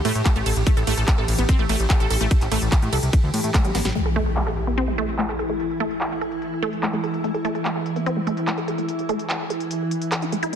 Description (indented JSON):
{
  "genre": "psychedelic trance",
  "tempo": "146 BPM",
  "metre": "4/4",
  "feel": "straight",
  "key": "unclear",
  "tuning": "A4 = 440 Hz",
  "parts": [
    { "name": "evolving wavetable pad", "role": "sustained chords", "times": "0.0-10.6 s", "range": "E3 to G4", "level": "-27 LUFS", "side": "equal", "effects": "ensemble chorus, built-in reverb, sidechain pumping" },
    { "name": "fat analog bass", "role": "bass", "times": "0.0-3.9 s", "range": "A1 to A2", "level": "-23 LUFS", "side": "equal", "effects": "none" },
    { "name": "wide unison pluck", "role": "riff", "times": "0.1-10.6 s", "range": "G3 to A4", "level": "-26 LUFS", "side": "right 1 dB", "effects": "auto-pan, sidechain pumping, dub echo" },
    { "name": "big-room dance drum kit", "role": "drums", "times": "0.1-10.6 s", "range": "handclaps, hi-hat, ride cymbal, snare drum", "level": "-29 LUFS", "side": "equal", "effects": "overdrive, low-pass filter on hats, low-pass filter on snare, low-pass filter on cymbals" },
    { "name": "electronic kick drum", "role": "drums", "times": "0.3-3.6 s", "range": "none", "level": "-18 LUFS", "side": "equal", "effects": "none" },
    { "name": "impact", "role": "sound effects", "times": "4.0-5.6 s", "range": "none", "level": "-27 LUFS", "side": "equal", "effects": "none" }
  ],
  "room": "moderate lush hall reverb, RT60 1.9 s",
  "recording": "dense, heavily limited modern master",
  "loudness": "-20 LUFS",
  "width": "side -8 dB against mid",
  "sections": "0.0-4.0 A section; 4.0-10.6 B section",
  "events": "drop 0.0-4.0; drum fill 3.7; impact 4.0-5.6; filter sweep on drum 4.0-10.6",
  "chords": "0.0 A5"
}